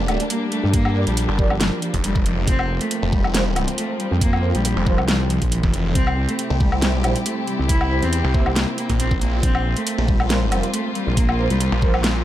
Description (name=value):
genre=heavy wobble dubstep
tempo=138 BPM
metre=4/4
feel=swing 53% on 16ths, half-time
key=unclear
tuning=A4 = 440 Hz
part: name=dark chamber string section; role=sustained chords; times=0.0-12.2 s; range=C3 to G4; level=-29 LUFS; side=left 2 dB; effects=sidechain pumping
part: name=snarling distorted saw bass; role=bass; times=0.0-12.2 s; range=F1 to C2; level=-22 LUFS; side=equal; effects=distortion, overdrive
part: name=warm cello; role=melody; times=0.1-12.2 s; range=E3 to E4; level=-25 LUFS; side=equal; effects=tape echo
part: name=dark brass ensemble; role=stabs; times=0.1-12.0 s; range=E4 to D5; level=-30 LUFS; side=right 4 dB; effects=tape echo
part: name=dubstep drum kit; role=drums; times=0.1-12.1 s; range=hi-hat, snare drum, woodblock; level=-24 LUFS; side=equal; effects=none
part: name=wobble bass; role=bass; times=0.6-11.7 s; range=F1 to G2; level=-21 LUFS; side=equal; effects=chorus, overdrive
part: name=electronic kick drum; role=drums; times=0.7-11.9 s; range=none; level=-20 LUFS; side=equal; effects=none
room=light reverb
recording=none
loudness=-17 LUFS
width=side -13 dB against mid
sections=0.0-12.2 A section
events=none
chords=0.0 Gm; 2.5 Fsus4; 6.0 C; 9.4 Bbsus2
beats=0.30 | 0.74 1.17 1.61 2.04 | 2.48 2.91 3.35 3.78 | 4.21 4.65 5.08 5.52 | 5.95 6.39 6.82 7.26 | 7.69 8.13 8.56 9.00 | 9.43 9.87 10.30 10.74 | 11.17 11.61 12.04